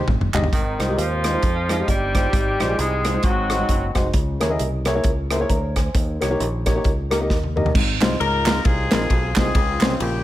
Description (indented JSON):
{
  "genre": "uptempo gospel",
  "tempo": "133 BPM",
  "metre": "4/4",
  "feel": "swing 59% on 8ths",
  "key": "Ab major",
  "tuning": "A4 = 437 Hz",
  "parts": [
    { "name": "fingered electric bass", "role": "bass", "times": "0.1-10.2 s", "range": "F1 to F2", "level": "-25 LUFS", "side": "equal", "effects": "none" },
    { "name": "natural country drum kit", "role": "drums", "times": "0.1-10.1 s", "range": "crash cymbal, hi-hat, kick drum, ride cymbal, rim click, snare drum, toms", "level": "-22 LUFS", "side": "equal", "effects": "none" },
    { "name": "warm grand piano", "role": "accompaniment", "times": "0.3-10.2 s", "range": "Ab2 to Bb5", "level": "-24 LUFS", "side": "left 1 dB", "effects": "none" },
    { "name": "group handclap", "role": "percussion", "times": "0.3-0.4, 8.0-9.9 s", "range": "none", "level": "-29 LUFS", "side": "right 7 dB", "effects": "none" },
    { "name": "breathy tenor saxophone", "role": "melody", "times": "0.5-3.9 s", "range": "Eb3 to Ab3", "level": "-26 LUFS", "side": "right 3 dB", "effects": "none" },
    { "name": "warm horn section", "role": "melody", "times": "0.5-4.1, 8.2-10.2 s", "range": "C4 to Bb4", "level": "-25 LUFS", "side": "left 4 dB", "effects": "none" }
  ],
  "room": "light reverb",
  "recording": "none",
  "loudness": "-18 LUFS",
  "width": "side -14 dB against mid",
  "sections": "0.5-7.8 A section; 7.8-10.2 B section",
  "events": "drum fill 0.0-0.5, 7.3-7.8",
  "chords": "0.0 Abmaj7(no3); 0.5 Ab6; 2.3 Fm7/Ab; 3.2 Ab7; 4.1 Dbm6; 5.9 Eb7; 7.8 Ab6; 9.5 Dbmaj7",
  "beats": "0.08 | 0.53 0.98 1.43 1.88 | 2.33 2.78 3.23 3.69 | 4.14 4.59 5.04 5.50 | 5.95 6.40 6.85 7.30 | 7.75 8.20 8.65 9.10 | 9.55 10.00"
}